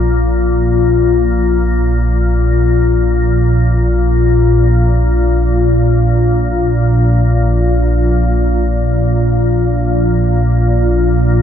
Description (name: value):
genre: ambient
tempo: free time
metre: none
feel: none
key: unclear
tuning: A4 = 440 Hz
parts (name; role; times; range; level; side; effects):
- organ-like drone; solo; 0.0-11.4 s; Bb1 to Bb2; -10 LUFS; equal; ensemble chorus, built-in reverb
room: wet cathedral reverb, RT60 6.4 s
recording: none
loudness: -10 LUFS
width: side -9 dB against mid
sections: 0.0-4.8 A section; 4.8-11.4 B section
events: none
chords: none